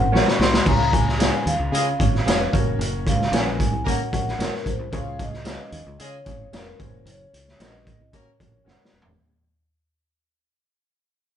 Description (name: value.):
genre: uptempo 1960s-style soul.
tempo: 112 BPM.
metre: 4/4.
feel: straight.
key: unclear.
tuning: A4 = 440 Hz.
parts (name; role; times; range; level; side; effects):
vibraphone with soft mallets; melody; 0.0-8.6 s; Bb4 to Db6; -28 LUFS; left 1 dB; none.
clear upright piano; accompaniment; 0.0-9.1 s; Db3 to Eb5; -30 LUFS; left 6 dB; none.
fingered electric bass; bass; 0.0-9.2 s; Fb1 to Db3; -27 LUFS; equal; none.
mellow electric guitar; stabs; 0.1-8.8 s; Ab4 to Gb5; -30 LUFS; right 4 dB; none.
raw garage drum kit; drums; 0.2-9.1 s; crash cymbal, hi-hat, kick drum, snare drum, toms; -22 LUFS; right 1 dB; none.
warm horn section; second line; 1.7-8.3 s; Ab3 to Bb4; -30 LUFS; right 1 dB; none.
room: light reverb.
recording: band playing live in one room, nothing above 10.9 kHz.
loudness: -19 LUFS.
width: side -9 dB against mid.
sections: 0.0-9.2 A section.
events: fade-out 0.0-9.2; drum fill 0.1-0.7, 8.7-9.2.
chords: 0.0 Gb; 0.7 Db; 2.5 Gb; 4.9 Db; 6.8 Gb.